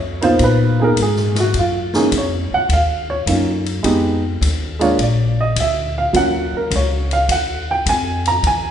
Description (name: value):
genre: jazz piano trio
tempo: 105 BPM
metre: 4/4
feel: swing 69% on 8ths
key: Eb minor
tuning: A4 = 440 Hz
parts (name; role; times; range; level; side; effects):
- dark upright piano; melody; 0.0-8.7 s; Gb3 to Bb5; -17 LUFS; right 2 dB; none
- upright bass; bass; 0.0-8.7 s; Bb1 to Bb2; -20 LUFS; left 1 dB; none
- swinging big-band drum kit; drums; 0.2-8.6 s; hi-hat, kick drum, ride cymbal, snare drum; -25 LUFS; left 3 dB; none
room: moderate recital hall reverb, RT60 1.8 s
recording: recorded in a church or concert hall, nothing above 10.6 kHz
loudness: -15 LUFS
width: side -9 dB against mid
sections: 0.0-8.7 A section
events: upright piano solo 0.0-8.7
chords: 0.0 Db13 (rootless); 1.5 Gb6; 3.8 Fm7b5; 5.0 Bb; 6.1 Ebm9